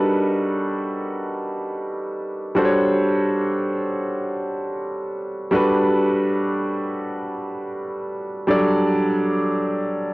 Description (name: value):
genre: R&B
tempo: free time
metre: none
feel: none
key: unclear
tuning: A4 = 440 Hz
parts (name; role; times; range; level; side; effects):
- clear concert grand piano; solo; 0.0-10.1 s; F#3 to D5; -20 LUFS; equal; cassette tape, analog delay
room: moderate studio reverb, RT60 0.5 s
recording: home recording on cassette, nothing above 11.0 kHz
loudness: -20 LUFS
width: side -21 dB against mid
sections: 0.0-10.1 A section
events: grand piano fill 10.0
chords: 0.0 Gmaj9